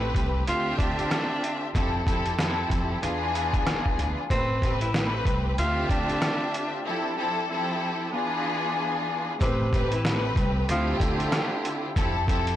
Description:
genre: hip hop, boom-bap hip-hop.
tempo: 94 BPM.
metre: 4/4.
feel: swing 60% on 16ths.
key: A minor.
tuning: A4 = 440 Hz.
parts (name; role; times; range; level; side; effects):
rich studio string section; accompaniment; 0.0-12.6 s; A2 to E5; -27 LUFS; left 1 dB; high-pass filter, low-pass filter.
upright bass; bass; 0.0-12.6 s; A1 to F2; -30 LUFS; equal; tube saturation.
trip hop sampler-style drum kit; drums; 0.1-12.6 s; hi-hat, kick drum, rim click, snare drum; -27 LUFS; equal; none.
breathy tenor saxophone; melody; 0.5-11.9 s; C3 to F4; -31 LUFS; equal; high-pass filter, low-pass filter, ping-pong delay.
room: studio reverb.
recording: blown-out, overdriven recording, vinyl crackle, overdrive.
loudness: -24 LUFS.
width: side -12 dB against mid.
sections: 0.0-9.4 A section; 9.4-12.6 B section.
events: break 6.9-9.4.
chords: 0.5 Dm11; 1.7 Fmaj9; 3.0 E7b9; 4.3 Am7; 5.6 Dm11; 6.9 Fmaj9; 8.1 E7b9; 9.4 Am7; 10.7 Dm11; 12.0 Fmaj9.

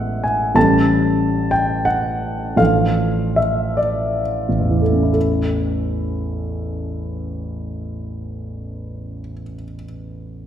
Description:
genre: classical, romantic character piece for solo piano.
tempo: 40-64 BPM (dotted quarters).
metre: 6/8.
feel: rubato.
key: A major.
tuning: A4 = 441 Hz.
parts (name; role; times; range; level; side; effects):
warm concert grand piano; solo; 0.0-10.5 s; A1 to A5; -18 LUFS; equal; none.
room: wet recital hall reverb, RT60 1.7 s.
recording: heard from further back in the room.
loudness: -16 LUFS.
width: side -10 dB against mid.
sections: 0.0-5.1 A section; 5.1-10.1 B section.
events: slowing down 0.0-5.1.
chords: 0.0 E9; 0.6 A7; 2.6 Dm/A; 5.1 A.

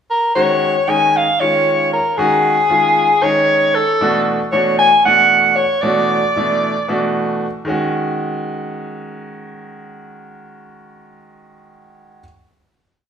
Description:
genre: jazz.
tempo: 229 BPM (eighths).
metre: 7/8.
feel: straight.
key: unclear.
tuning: A4 = 440 Hz.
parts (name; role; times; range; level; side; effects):
warm soprano saxophone; melody; 0.1-7.1 s; Ab4 to Ab5; -13 LUFS; left 1 dB; none.
bright grand piano; accompaniment; 0.4-12.2 s; B2 to Gb4; -20 LUFS; right 1 dB; none.
room: wet stone room reverb, RT60 1.2 s.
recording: band playing live in one room.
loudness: -13 LUFS.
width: side -7 dB against mid.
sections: 0.0-0.4 pickup bar; 0.4-7.7 groove; 7.7-11.3 final chord.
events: none.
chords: 0.4 Ebm11; 4.0 Bm7; 7.7 Ebm7.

